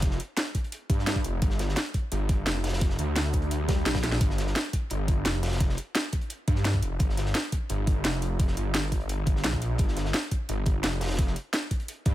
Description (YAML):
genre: dark technical drum and bass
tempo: 172 BPM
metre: 4/4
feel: straight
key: G minor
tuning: A4 = 444 Hz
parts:
  - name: wide detuned saw bass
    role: bass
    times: 0.0-12.1 s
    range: F1 to G2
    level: -28 LUFS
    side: equal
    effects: chorus, overdrive
  - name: crunchy breakbeat drum kit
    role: drums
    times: 0.0-12.1 s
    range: hi-hat, snare drum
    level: -38 LUFS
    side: equal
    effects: high-pass filter on hats, high-pass filter on snare, high-pass filter on room
  - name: drum and bass drum kit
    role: drums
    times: 0.0-12.1 s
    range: hi-hat, snare drum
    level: -30 LUFS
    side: equal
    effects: overdrive
  - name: electronic kick drum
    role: drums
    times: 0.0-12.1 s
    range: none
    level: -26 LUFS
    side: equal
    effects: overdrive
  - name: swell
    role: sound effects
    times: 3.6-4.2 s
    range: none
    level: -36 LUFS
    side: equal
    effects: none
room: little or no reverb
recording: none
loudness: -25 LUFS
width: side -14 dB against mid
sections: 0.0-12.1 A section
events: swell 3.6-4.2; drum fill 4.0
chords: none